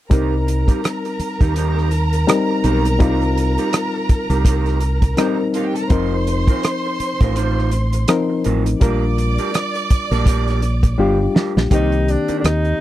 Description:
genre	lush 1970s-style soul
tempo	83 BPM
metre	4/4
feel	swing 58% on 16ths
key	C dorian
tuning	A4 = 440 Hz
part	rich studio violin section	second line	0.1-11.3 s	F4 to D6	-25 LUFS	right 2 dB	none
part	reed electric piano	accompaniment	0.1-12.8 s	Eb3 to Bb4	-21 LUFS	left 4 dB	none
part	electric guitar through a small old amp	riff	0.1-12.7 s	D4 to C5	-26 LUFS	right 9 dB	none
part	fingered electric bass	bass	0.1-12.7 s	F1 to Eb2	-18 LUFS	equal	none
part	warm soul drum kit	drums	0.1-12.8 s	hi-hat, kick drum, rim click, snare drum	-17 LUFS	equal	none
part	breathy tenor saxophone	melody	11.7-12.8 s	D4 to Eb4	-22 LUFS	equal	none
room	little or no reverb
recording	none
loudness	-15 LUFS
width	side -14 dB against mid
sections	0.1-11.7 A section; 11.7-12.8 B section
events	drum fill 11.0-11.7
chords	0.1 Cm7; 5.9 F7sus4; 8.8 Bb6; 11.7 Cm7

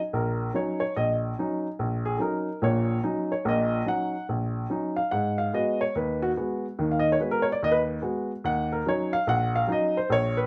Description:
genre	solo jazz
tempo	144 BPM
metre	4/4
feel	swing 65% on 8ths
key	Eb minor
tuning	A4 = 438 Hz
part	warm upright piano	solo	0.1-10.5 s	Bb1 to Gb5	-27 LUFS	equal	none
room	moderate club reverb, RT60 0.7 s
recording	none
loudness	-27 LUFS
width	mono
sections	0.0-10.5 A section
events	upright piano solo 0.0-10.5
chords	0.0 Ebm7; 5.1 Abm7; 8.4 Ebm7

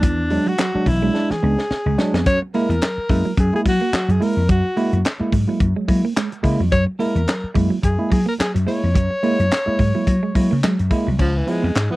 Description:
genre	funk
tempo	108 BPM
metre	4/4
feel	swing 56% on 16ths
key	unclear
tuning	A4 = 441 Hz
part	bright alto saxophone	melody	0.0-12.0 s	E3 to Db5	-23 LUFS	left 1 dB	none
part	semi-hollow electric guitar	riff	0.0-11.8 s	E3 to Db4	-26 LUFS	right 5 dB	spring reverb
part	tine electric piano	stabs	0.0-12.0 s	Db3 to Fb4	-23 LUFS	right 1 dB	none
part	vintage slap bass	bass	0.0-11.9 s	B1 to Gb3	-19 LUFS	left 1 dB	none
part	tight funk drum kit	drums	0.0-11.9 s	crash cymbal, handclaps, hi-hat, kick drum, snare drum	-22 LUFS	equal	none
room	little or no reverb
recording	dry, close 1970s-style studio recording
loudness	-16 LUFS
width	side -19 dB against mid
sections	0.0-2.3 A section; 2.3-11.2 B section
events	alto saxophone solo 0.0-2.3; drum fill 1.1-2.3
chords	0.0 E9; 2.3 Gb9; 11.2 Db7#9

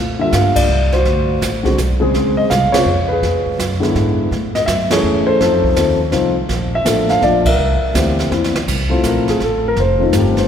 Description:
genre	jazz piano trio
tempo	165 BPM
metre	3/4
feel	swing 65% on 8ths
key	unclear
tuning	A4 = 443 Hz
part	upright bass	bass	0.0-10.5 s	F1 to Bb2	-19 LUFS	equal	none
part	dark baby grand piano	melody	0.2-10.5 s	Db3 to F5	-15 LUFS	left 1 dB	none
part	jazz brush drum kit	drums	0.3-10.5 s	brushed snare drum, crash cymbal, hi-hat, kick drum, ride cymbal, snare drum	-22 LUFS	right 2 dB	none
room	wet cathedral reverb, RT60 4.9 s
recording	recorded in a church or concert hall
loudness	-13 LUFS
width	side -8 dB against mid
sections	0.0-8.7 A section; 8.7-10.5 B section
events	band accent 0.5, 2.7, 4.9, 7.4; drum fill 8.3-8.7; grand piano solo 8.7-10.5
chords	0.0 Bb6; 1.0 D7#11; 2.1 Dbmaj7; 3.2 E7; 4.3 Amaj7; 5.4 F7; 6.5 Bbmaj7; 7.6 C7; 8.7 Fmaj7; 9.8 F7

